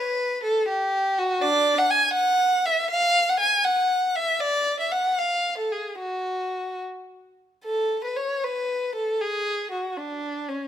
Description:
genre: classical, baroque-style suite movement for unaccompanied violin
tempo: 72-81 BPM (dotted quarters)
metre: 6/8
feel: rubato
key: F# minor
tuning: A4 = 440 Hz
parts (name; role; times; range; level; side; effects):
- warm violin; solo; 0.0-10.7 s; C#4 to G#5; -22 LUFS; equal; none
room: moderate stone room reverb, RT60 1.2 s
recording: none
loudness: -22 LUFS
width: side -10 dB against mid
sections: 0.0-7.6 A section; 7.6-10.7 B section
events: none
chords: none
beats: 0.69 | 1.43 2.17 | 2.91 3.66 | 4.42 5.19 | 6.00 6.82 | 7.64 8.43 | 9.19 9.96

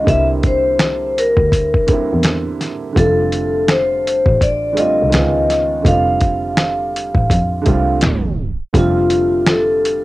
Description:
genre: lo-fi hip hop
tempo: 83 BPM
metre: 4/4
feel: swing 65% on 16ths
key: F major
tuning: A4 = 440 Hz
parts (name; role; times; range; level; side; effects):
- vibraphone with medium hard mallets; melody; 0.0-10.0 s; F4 to F5; -16 LUFS; left 1 dB; cassette tape
- warm upright piano; accompaniment; 0.0-10.0 s; D3 to F4; -21 LUFS; right 5 dB; cassette tape
- rich double bass; bass; 0.0-10.0 s; F1 to F2; -20 LUFS; equal; none
- dusty soul sampler-style drum kit; drums; 0.1-10.0 s; finger snaps, hi-hat, kick drum, snare drum; -16 LUFS; equal; overdrive, cassette tape
room: light reverb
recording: home recording on cassette, tape stop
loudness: -13 LUFS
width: side -18 dB against mid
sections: 0.0-8.7 A section; 8.7-10.0 A section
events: tape stop 8.0-8.7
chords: 0.1 C7; 3.0 F6; 5.1 Db9; 5.9 F6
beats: | 0.07 0.79 1.51 2.24 | 2.96 3.68 4.41 5.13 | 5.85 6.58 7.30 8.02 | 8.74 9.47

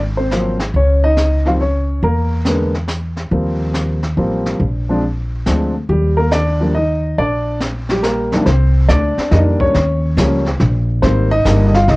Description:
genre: jazz piano trio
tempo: 140 BPM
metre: 3/4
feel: swing 67% on 8ths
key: Eb major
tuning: A4 = 441 Hz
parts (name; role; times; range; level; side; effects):
- upright bass; bass; 0.0-12.0 s; G1 to F2; -16 LUFS; equal; none
- warm baby grand piano; melody; 0.2-12.0 s; C2 to F5; -17 LUFS; equal; cassette tape
- jazz brush drum kit; drums; 0.3-12.0 s; brushed snare drum, hi-hat, kick drum, snare drum; -24 LUFS; equal; cassette tape
room: little or no reverb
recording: home recording on cassette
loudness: -13 LUFS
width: side -22 dB against mid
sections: 0.0-8.5 A section; 8.5-12.0 B section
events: none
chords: 0.0 Ab13; 0.7 Dbsus2; 2.0 E(b5, no3); 3.3 Eb6; 4.6 Bb9; 5.9 Ebmaj7; 8.5 Cm9; 9.7 Eb7(no3); 11.0 Abmaj7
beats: 0.31 | 0.74 1.17 1.60 | 2.03 2.46 2.89 | 3.31 3.74 4.17 | 4.60 5.03 5.46 | 5.89 6.32 6.75 | 7.18 7.61 8.03 | 8.46 8.89 9.32 | 9.74 10.17 10.60 | 11.03 11.45 11.88

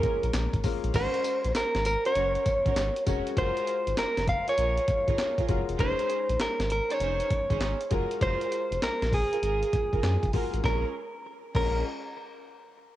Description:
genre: R&B, new jack swing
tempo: 99 BPM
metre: 4/4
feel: swing 66% on 16ths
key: Bb minor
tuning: A4 = 438 Hz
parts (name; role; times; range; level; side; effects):
- direct-recorded clean electric guitar; melody; 0.0-11.8 s; Ab4 to F5; -28 LUFS; equal; spring reverb
- warm concert grand piano; accompaniment; 0.0-11.8 s; Ab3 to Db5; -37 LUFS; left 11 dB; cassette tape
- warm symphonic string section; stabs; 0.0-11.8 s; Db4 to C5; -37 LUFS; right 12 dB; cassette tape
- breakbeat sampler-style drum kit; drums; 0.0-11.7 s; crash cymbal, handclaps, hi-hat, kick drum, snare drum, tambourine; -31 LUFS; equal; cassette tape
- round analog bass; bass; 0.2-11.8 s; E1 to Gb2; -30 LUFS; equal; none
room: digital ambience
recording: home recording on cassette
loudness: -25 LUFS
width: side -14 dB against mid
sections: 0.9-10.6 A section; 10.6-13.0 B section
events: none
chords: 0.0 Bbm7; 0.9 Ab9sus4; 3.4 Gbmaj9; 5.8 Bbm11/F; 7.9 Gbmaj9; 10.6 Bbm7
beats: 0.34 | 0.94 1.55 2.15 2.76 | 3.37 3.97 4.58 5.18 | 5.79 6.39 7.00 7.61 | 8.21 8.82 9.43 10.03 | 10.64 11.24

